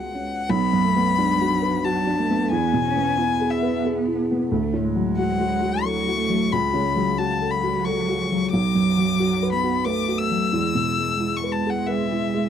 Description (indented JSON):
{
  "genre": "neoclassical piano and strings",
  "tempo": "90 BPM",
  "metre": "3/4",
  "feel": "rubato",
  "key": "unclear",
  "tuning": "A4 = 444 Hz",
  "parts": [
    { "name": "rich violin", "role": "melody", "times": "0.0-12.5 s", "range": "E5 to E6", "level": "-24 LUFS", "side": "left 7 dB", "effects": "none" },
    { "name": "warm cello", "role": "second line", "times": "0.0-12.5 s", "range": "F#3 to C#4", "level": "-27 LUFS", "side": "right 7 dB", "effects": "none" },
    { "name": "felt-muted upright piano", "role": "accompaniment", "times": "0.0-12.5 s", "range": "B1 to B4", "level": "-22 LUFS", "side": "equal", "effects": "none" }
  ],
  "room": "little or no reverb",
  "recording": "dry, close 1970s-style studio recording",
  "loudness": "-20 LUFS",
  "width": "side -8 dB against mid",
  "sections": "0.5-12.5 A section",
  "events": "none",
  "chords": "0.5 Bm; 2.5 E; 4.5 D; 6.5 F#m/C#; 8.5 Bm; 10.5 E"
}